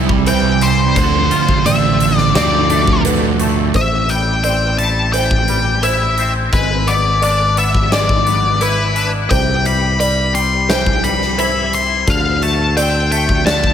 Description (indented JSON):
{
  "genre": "post-rock",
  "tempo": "86 BPM",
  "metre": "4/4",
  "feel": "straight",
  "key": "A minor",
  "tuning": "A4 = 439 Hz",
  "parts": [
    { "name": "felt-muted upright piano", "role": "arpeggios", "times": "0.0-13.7 s", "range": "B4 to D5", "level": "-24 LUFS", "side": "right 2 dB", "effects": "digital delay" },
    { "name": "twangy electric guitar", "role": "arpeggios", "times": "0.0-13.7 s", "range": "A2 to F4", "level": "-23 LUFS", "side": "left 3 dB", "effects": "ensemble chorus, digital delay" },
    { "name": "sludgy distorted guitar", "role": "riff", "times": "0.0-3.7 s", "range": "C3 to E4", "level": "-17 LUFS", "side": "right 11 dB", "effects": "overdrive" },
    { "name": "modern bright fingered electric bass", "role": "bass", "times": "0.0-13.7 s", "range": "G#1 to D2", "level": "-18 LUFS", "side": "left 1 dB", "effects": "none" },
    { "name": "huge arena drum kit", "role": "drums", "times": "0.1-13.7 s", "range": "hi-hat, kick drum, snare drum", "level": "-20 LUFS", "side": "equal", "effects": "none" },
    { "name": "octave-fuzz lead guitar", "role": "melody", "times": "0.3-13.7 s", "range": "B4 to C6", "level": "-17 LUFS", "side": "left 2 dB", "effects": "distortion, digital delay" }
  ],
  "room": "light reverb, small room ambience",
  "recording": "none",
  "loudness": "-12 LUFS",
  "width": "side -9 dB against mid",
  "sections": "0.0-3.7 A section; 3.7-13.7 B section",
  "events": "none",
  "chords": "0.0 C; 1.0 Dm7; 3.7 Am7; 6.5 E7/G#; 9.3 C; 12.1 D7(no3)"
}